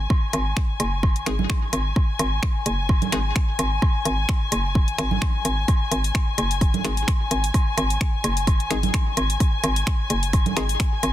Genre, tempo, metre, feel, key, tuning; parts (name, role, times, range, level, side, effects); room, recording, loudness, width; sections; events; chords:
minimal techno; 129 BPM; 4/4; swing 55% on 16ths; A4 = 440 Hz
hollow knocking FM bass; bass; 0.0-11.1 s; F#1 to G#1; -24 LUFS; equal; sidechain pumping
warm chamber string section; texture; 0.0-11.1 s; G#5; -28 LUFS; left 4 dB; sidechain pumping
electronic kick drum; drums; 0.1-10.9 s; -20 LUFS; equal; overdrive
woodblock and congas; percussion; 0.1-11.1 s; -29 LUFS; right 4 dB; overdrive, ping-pong delay
house drum kit; drums; 0.3-11.1 s; finger snaps, hi-hat; -27 LUFS; left 2 dB; overdrive, soft clipping on snare
wavetable chord stab; stabs; 1.3-3.2, 6.8-10.6 s; G#3 to G#4; -32 LUFS; left 3 dB; ping-pong delay
little or no reverb; dense, heavily limited modern master; -20 LUFS; side -13 dB against mid
0.0-11.1 A section
0.0 G#5